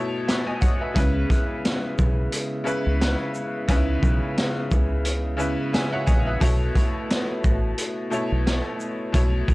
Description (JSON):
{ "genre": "hip hop, boom-bap hip-hop", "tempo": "88 BPM", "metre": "4/4", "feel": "swing 58% on 16ths", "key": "C# minor", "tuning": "A4 = 439 Hz", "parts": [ { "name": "bright upright piano", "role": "accompaniment", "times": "0.0-9.5 s", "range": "B2 to G#5", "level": "-27 LUFS", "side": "left 1 dB", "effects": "cassette tape" }, { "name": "crunchy breakbeat drum kit", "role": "drums", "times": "0.3-9.5 s", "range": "hi-hat, kick drum, shaker, snare drum", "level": "-23 LUFS", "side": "equal", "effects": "none" }, { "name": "tonewheel organ", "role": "sustained chords", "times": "1.0-9.5 s", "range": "C#3 to E4", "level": "-31 LUFS", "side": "right 1 dB", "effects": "slow rotary speaker" }, { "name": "deep dub fingered electric bass", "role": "bass", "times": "1.0-9.5 s", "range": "A1 to C#2", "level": "-24 LUFS", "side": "equal", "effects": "tube saturation" } ], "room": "small room ambience", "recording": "dry, gritty hardware recording, cassette tape", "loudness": "-21 LUFS", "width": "side -21 dB against mid", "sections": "0.0-9.5 A section", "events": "break 0.0-1.0", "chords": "0.0 B9sus4; 1.0 C#m7; 6.4 B9sus4" }